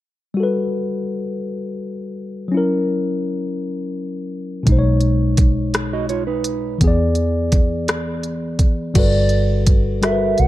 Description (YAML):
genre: slow six-eight R&B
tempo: 56 BPM (dotted quarters)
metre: 6/8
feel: straight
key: unclear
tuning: A4 = 440 Hz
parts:
  - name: mellow tine electric piano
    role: accompaniment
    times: 0.3-10.5 s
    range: B2 to D5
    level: -21 LUFS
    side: left 2 dB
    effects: none
  - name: vintage muted fingered electric bass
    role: bass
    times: 4.7-10.5 s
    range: G1 to E2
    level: -20 LUFS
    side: equal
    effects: none
  - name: smooth R&B drum kit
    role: drums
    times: 4.7-10.5 s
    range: crash cymbal, hi-hat, kick drum, rim click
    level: -17 LUFS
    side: equal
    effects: none
  - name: mellow electric guitar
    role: second line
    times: 5.9-6.8 s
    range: D#4 to D#5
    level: -25 LUFS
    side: right 9 dB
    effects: none
  - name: gliding portamento lead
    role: melody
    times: 9.0-10.5 s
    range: D5 to F#5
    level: -21 LUFS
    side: right 4 dB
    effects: chorus, slapback echo
room: light reverb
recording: dark, warm production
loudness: -16 LUFS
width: side -15 dB against mid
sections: 0.4-9.0 A section; 9.0-10.5 B section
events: none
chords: 0.4 Gmaj9; 2.5 F#7; 4.7 B69; 6.8 E7; 9.0 Gmaj9